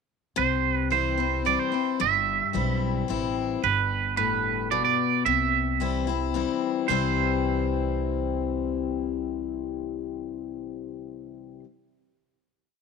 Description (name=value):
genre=honky-tonk and classic country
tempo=110 BPM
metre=3/4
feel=straight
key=C major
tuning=A4 = 440 Hz
part: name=twangy electric guitar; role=melody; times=0.4-11.6 s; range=B4 to E5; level=-25 LUFS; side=right 13 dB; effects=wide subtle chorus
part: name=picked steel-string acoustic guitar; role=accompaniment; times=0.4-11.7 s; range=G2 to E4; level=-28 LUFS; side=left 10 dB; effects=none
part: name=upright bass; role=bass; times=0.4-11.6 s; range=G1 to C2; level=-31 LUFS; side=right 2 dB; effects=none
room=light reverb, small room ambience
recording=1960s-style stereo with parts hard left and right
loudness=-24 LUFS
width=side -5 dB against mid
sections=0.4-6.9 A section; 6.9-10.2 final chord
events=none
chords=0.4 C; 3.6 G; 5.3 C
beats=| 0.37 0.91 1.46 | 2.00 2.54 3.09 | 3.63 4.17 4.72 | 5.26 5.80 6.35 | 6.89 7.43 7.97 | 8.52 9.06 9.61